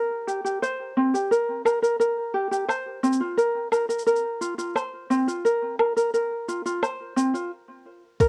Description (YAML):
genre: folktronica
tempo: 87 BPM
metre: 4/4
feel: straight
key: unclear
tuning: A4 = 440 Hz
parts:
  - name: ukulele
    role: arpeggios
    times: 0.0-8.3 s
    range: C4 to C5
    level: -25 LUFS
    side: equal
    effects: low-pass filter
  - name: electronic shaker, woodblock and hi-hat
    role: drums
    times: 0.3-8.3 s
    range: none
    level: -34 LUFS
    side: equal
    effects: cassette tape
  - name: electronic kick drum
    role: drums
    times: 8.2-8.3 s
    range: none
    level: -24 LUFS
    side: equal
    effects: cassette tape
room: light reverb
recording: home recording on cassette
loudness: -25 LUFS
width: mono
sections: 0.0-8.2 A section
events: stop 7.5-8.2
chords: none